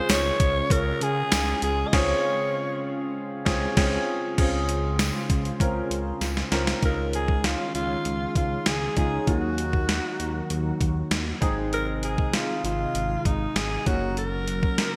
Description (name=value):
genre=1980s-style pop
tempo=98 BPM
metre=4/4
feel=straight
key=Db major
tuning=A4 = 440 Hz
part: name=raspy alto saxophone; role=melody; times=0.0-2.9, 6.8-15.0 s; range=Eb4 to Eb5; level=-30 LUFS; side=equal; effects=delay
part: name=warm grand piano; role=accompaniment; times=0.0-15.0 s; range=Gb3 to Bb4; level=-33 LUFS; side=equal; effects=subtle chorus
part: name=lush unison pad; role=sustained chords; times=0.0-15.0 s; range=C3 to C5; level=-35 LUFS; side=equal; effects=chorus
part: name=smooth synth bass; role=bass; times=0.1-14.6 s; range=Gb1 to Db3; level=-32 LUFS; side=equal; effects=none
part: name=gated 80s digital drum machine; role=drums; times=0.1-14.9 s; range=crash cymbal, hi-hat, kick drum, snare drum, tambourine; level=-28 LUFS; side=equal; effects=gated reverb, gated reverb snare
part: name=tambourine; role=percussion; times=0.1-6.4 s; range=none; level=-44 LUFS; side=equal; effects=none
room=wet lush hall reverb, RT60 2.2 s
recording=bright 1980s-style digital production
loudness=-25 LUFS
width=mono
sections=0.0-4.4 A section; 4.4-6.8 B section; 6.8-15.0 C section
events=band accent 1.9-4.4; drum fill 6.2-6.8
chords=0.0 Dbmaj7; 6.8 Dbadd9; 9.3 Ebm; 11.4 Ab; 13.9 Gb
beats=0.09 0.70 1.32 | 1.93 2.54 3.15 3.77 | 4.38 4.99 5.60 6.21 | 6.83 7.44 8.05 8.66 | 9.28 9.89 10.50 11.11 | 11.73 12.34 12.95 13.56 | 14.18 14.79